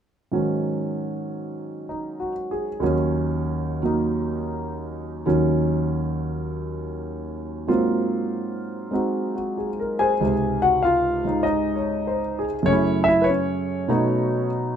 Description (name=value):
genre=solo jazz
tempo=97 BPM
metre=4/4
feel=swing 67% on 8ths, rubato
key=Db major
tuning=A4 = 440 Hz
part: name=warm concert grand piano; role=solo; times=0.3-14.8 s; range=Db2 to Ab5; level=-21 LUFS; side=equal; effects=none
room=light reverb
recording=close, detailed microphones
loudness=-21 LUFS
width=side -8 dB against mid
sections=0.3-10.2 A section; 10.2-14.8 B section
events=none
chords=0.3 Ab7sus4; 2.8 Ebm7; 7.7 Ab13; 10.2 Dbmaj7; 12.7 Gbm7; 13.9 Cb7